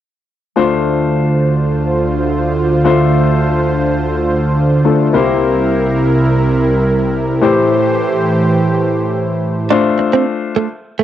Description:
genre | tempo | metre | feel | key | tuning
pop | 105 BPM | 4/4 | straight | D minor | A4 = 440 Hz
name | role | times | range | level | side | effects
warm concert grand piano | accompaniment | 0.6-10.6 s | A3 to C5 | -17 LUFS | left 5 dB | cassette tape
soft supersaw | sustained chords | 0.6-9.7 s | C2 to C5 | -13 LUFS | right 1 dB | cassette tape
direct-recorded clean electric guitar | riff | 9.7-11.0 s | A3 to D4 | -15 LUFS | right 7 dB | lush chorus, cassette tape
room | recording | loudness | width
moderate spring reverb, RT60 1.4 s, small room ambience | home recording on cassette | -12 LUFS | side -11 dB against mid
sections
0.6-9.7 A section; 9.7-11.0 B section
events
none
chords
0.6 Dm7; 5.1 C7; 7.4 Am7; 9.7 Dm7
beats
| 0.56 1.13 1.71 2.28 | 2.85 3.42 3.99 4.56 | 5.13 5.71 6.28 6.85 | 7.42 7.99 8.56 9.13 | 9.71 10.28 10.85

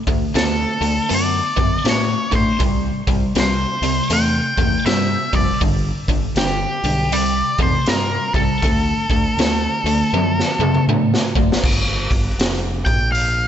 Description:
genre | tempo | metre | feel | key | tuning
blues rock power trio and southern rock | 80 BPM | 4/4 | swing 63% on 8ths | unclear | A4 = 443 Hz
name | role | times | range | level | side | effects
biting overdriven guitar | riff | 0.0-11.6 s | G2 to B3 | -21 LUFS | left 1 dB | slapback echo
growling fingered electric bass | bass | 0.1-13.5 s | F1 to A2 | -24 LUFS | equal | overdrive
raw garage drum kit | drums | 0.1-13.4 s | crash cymbal, hi-hat, kick drum, snare drum, toms | -20 LUFS | equal | none
octave-fuzz lead guitar | melody | 0.4-13.5 s | G4 to G5 | -21 LUFS | left 1 dB | distortion, slapback echo
room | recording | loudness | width
light reverb | nothing above 8.0 kHz | -16 LUFS | side -10 dB against mid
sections
0.0-11.6 A section; 11.6-13.5 B section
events
drum fill 10.1-11.6; lead electric guitar solo 11.6-13.5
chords
0.0 D; 2.6 C; 5.6 G; 7.1 C5; 8.6 D; 11.6 Fsus2; 12.8 Bb5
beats
0.35 1.10 1.85 | 2.60 3.35 4.10 4.86 | 5.61 6.36 7.11 7.86 | 8.62 9.37 10.12 10.88 | 11.63 12.39 13.14

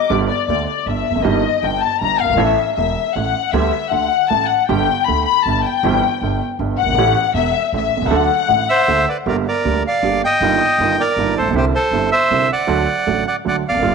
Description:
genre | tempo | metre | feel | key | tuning
tango | 158 BPM | 3/4 | rubato | G major, G minor from 9.3 s | A4 = 440 Hz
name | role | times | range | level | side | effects
warm studio violin section | second line | 0.0-9.1 s | D5 to D6 | -17 LUFS | left 12 dB | none
warm baby grand piano | accompaniment | 0.1-13.9 s | E1 to A4 | -20 LUFS | right 8 dB | none
upright bass | bass | 0.1-13.9 s | E1 to D2 | -24 LUFS | equal | none
bandoneon | melody | 8.7-13.9 s | G4 to G5 | -16 LUFS | right 1 dB | none
room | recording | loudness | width
moderate echo chamber reverb, RT60 2.0 s | 1960s-style stereo with parts hard left and right | -14 LUFS | side -5 dB against mid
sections
0.1-9.3 A section; 9.3-13.9 B section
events
violin section solo 0.1-9.3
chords
0.1 G; 1.3 Eb/G; 2.4 A; 3.5 G/D; 3.9 D; 4.7 G; 5.8 C/G; 7.0 A7; 8.1 D; 9.3 Gm; 10.4 Ebadd9/G; 11.6 Cadd9; 12.7 D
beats
| 0.11 0.49 0.87 | 1.25 1.64 2.01 | 2.39 2.77 3.15 | 3.53 3.92 4.30 | 4.69 5.07 5.45 | 5.83 6.21 6.59 | 6.97 7.35 7.73 | 8.11 8.49 8.88 | 9.27 9.65 10.04 | 10.42 10.80 11.18 | 11.55 11.93 12.31 | 12.69 13.07 13.46 | 13.84

